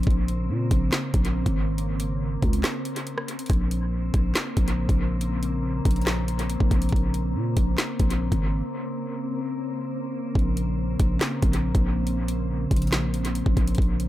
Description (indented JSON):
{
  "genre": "hip hop, drill",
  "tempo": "140 BPM",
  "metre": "4/4",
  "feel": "half-time",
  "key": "Bb minor",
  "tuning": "A4 = 440 Hz",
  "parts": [
    { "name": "glassy FM pad", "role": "sustained chords", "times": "0.0-14.1 s", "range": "Db3 to C4", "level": "-30 LUFS", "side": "equal", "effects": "ensemble chorus, built-in reverb" },
    { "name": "growling 808-style bass", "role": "bass", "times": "0.0-14.1 s", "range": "Ab1 to Bb2", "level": "-25 LUFS", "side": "equal", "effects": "none" },
    { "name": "drill drum kit", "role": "drums", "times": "0.0-14.1 s", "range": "handclaps, hi-hat, kick drum, rim click, snare drum", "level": "-24 LUFS", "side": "equal", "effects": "dub echo" }
  ],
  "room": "little or no reverb",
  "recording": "echo-heavy mix",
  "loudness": "-22 LUFS",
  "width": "side -14 dB against mid",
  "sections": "0.0-3.5 A section; 3.5-14.1 B section",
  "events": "break 2.6-3.5, 8.6-10.4",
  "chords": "0.0 Bbmadd9"
}